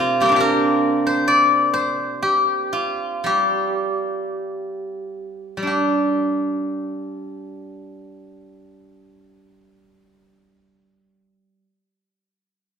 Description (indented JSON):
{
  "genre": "chinese traditional, Chinese solo plucked strings",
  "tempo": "46-71 BPM",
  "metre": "4/4",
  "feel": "rubato",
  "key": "G yu mode",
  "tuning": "A4 = 435 Hz",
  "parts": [
    { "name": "steel-string zither", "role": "solo", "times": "0.0-11.6 s", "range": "C3 to D5", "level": "-19 LUFS", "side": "equal", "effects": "none" }
  ],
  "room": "wet recital hall reverb, RT60 1.5 s",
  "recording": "recorded in a church or concert hall",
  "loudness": "-18 LUFS",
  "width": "side -7 dB against mid",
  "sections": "0.0-5.7 A section; 5.7-10.6 B section",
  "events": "slowing down 0.0-5.7",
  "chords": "none"
}